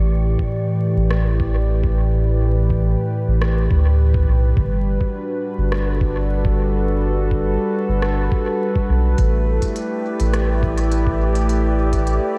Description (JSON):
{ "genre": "ambient dub", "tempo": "104 BPM", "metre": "4/4", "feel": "straight", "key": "unclear", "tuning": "A4 = 440 Hz", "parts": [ { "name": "warm analog pad", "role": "sustained chords", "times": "0.0-12.4 s", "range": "A2 to D5", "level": "-24 LUFS", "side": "equal", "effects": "chorus" }, { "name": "soft dub sub bass", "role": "bass", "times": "0.0-12.2 s", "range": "G1 to D2", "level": "-20 LUFS", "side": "equal", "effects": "none" }, { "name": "electronic kick drum", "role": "drums", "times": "0.4-12.0 s", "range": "none", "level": "-24 LUFS", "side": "equal", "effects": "none" }, { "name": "organic electronic drum kit", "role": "drums", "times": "1.1-12.2 s", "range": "hi-hat, rim click", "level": "-35 LUFS", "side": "equal", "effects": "dub echo" }, { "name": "wind-like tuned noise texture", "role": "texture", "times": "10.0-12.4 s", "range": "D5", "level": "-38 LUFS", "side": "equal", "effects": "built-in reverb, analog chorus" } ], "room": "light reverb", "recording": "vinyl crackle", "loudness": "-19 LUFS", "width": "mono", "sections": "0.0-12.4 A section", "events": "none", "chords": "0.0 A9sus4; 4.6 Gmaj7; 9.2 A9sus4" }